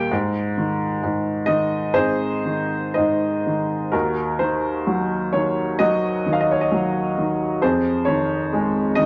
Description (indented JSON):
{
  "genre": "classical, lyrical solo piano",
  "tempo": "65 BPM",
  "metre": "4/4",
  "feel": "rubato",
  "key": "Eb dorian",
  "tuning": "A4 = 440 Hz",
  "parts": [
    { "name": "clear baby grand piano", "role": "solo", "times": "0.0-9.1 s", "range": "Eb2 to G5", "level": "-21 LUFS", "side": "equal", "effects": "none" }
  ],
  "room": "moderate small room reverb, RT60 0.6 s",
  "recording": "none",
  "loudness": "-21 LUFS",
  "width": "mono",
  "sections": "0.0-3.9 A section; 3.9-9.1 B section",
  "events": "none",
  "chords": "0.1 Ab; 3.9 Ebm; 7.6 Fm7"
}